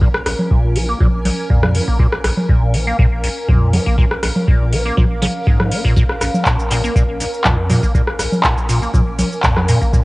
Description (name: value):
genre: acid house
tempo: 121 BPM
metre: 4/4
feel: straight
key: Bb minor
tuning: A4 = 442 Hz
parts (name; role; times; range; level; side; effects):
- liquid acid bass; riff; 0.0-10.0 s; Bb1 to Bb3; -19 LUFS; equal; phaser, ensemble chorus, sidechain pumping, cassette tape
- round analog bass; bass; 0.0-10.0 s; Ab1 to F2; -21 LUFS; equal; tube saturation, sidechain pumping
- electronic kick drum; drums; 0.0-10.0 s; none; -15 LUFS; equal; cassette tape
- granular cloud pad; texture; 0.0-10.0 s; Db4 to Ab5; -26 LUFS; equal; built-in reverb, sidechain pumping, cassette tape
- electro analog drum machine; drums; 0.1-10.0 s; congas, handclaps, hi-hat, rim click, shaker; -19 LUFS; equal; cassette tape
room: light reverb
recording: home recording on cassette, nothing above 10.7 kHz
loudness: -13 LUFS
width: side -22 dB against mid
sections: 0.0-10.0 A section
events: none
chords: 0.0 Bbm7